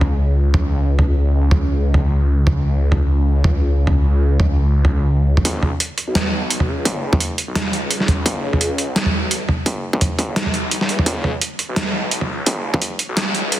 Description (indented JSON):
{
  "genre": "half-time drum and bass",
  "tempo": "171 BPM",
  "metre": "4/4",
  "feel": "swing 56% on 16ths, half-time",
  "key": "unclear",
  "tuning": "A4 = 445 Hz",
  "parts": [
    { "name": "phased detuned saw bass", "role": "bass", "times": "0.0-13.6 s", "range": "B1 to E2", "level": "-18 LUFS", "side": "equal", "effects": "phaser, high-pass filter" },
    { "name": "boom bap sampler-style drum kit", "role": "drums", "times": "0.0-13.6 s", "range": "hi-hat, snare drum, toms", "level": "-19 LUFS", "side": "right 1 dB", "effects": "none" },
    { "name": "electronic kick drum", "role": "drums", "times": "5.5-12.8 s", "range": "none", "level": "-21 LUFS", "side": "equal", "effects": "distortion, high-pass filter on kick" }
  ],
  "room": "light reverb, digital ambience",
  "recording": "dense, heavily limited modern master, high-pass filter",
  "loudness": "-16 LUFS",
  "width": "side -14 dB against mid",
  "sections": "0.0-5.5 A section; 5.5-13.6 B section",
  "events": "build-up 5.5-13.6",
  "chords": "none",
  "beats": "0.19 0.54 0.89 | 1.24 1.59 1.94 2.29 | 2.65 3.00 3.35 3.70 | 4.05 4.40 4.75 5.10 | 5.45 5.80 6.15 6.50 | 6.86 7.21 7.56 7.91 | 8.26 8.61 8.96 9.31 | 9.66 10.01 10.36 10.71 | 11.07 11.42 11.77 12.12 | 12.47 12.82 13.17 13.52"
}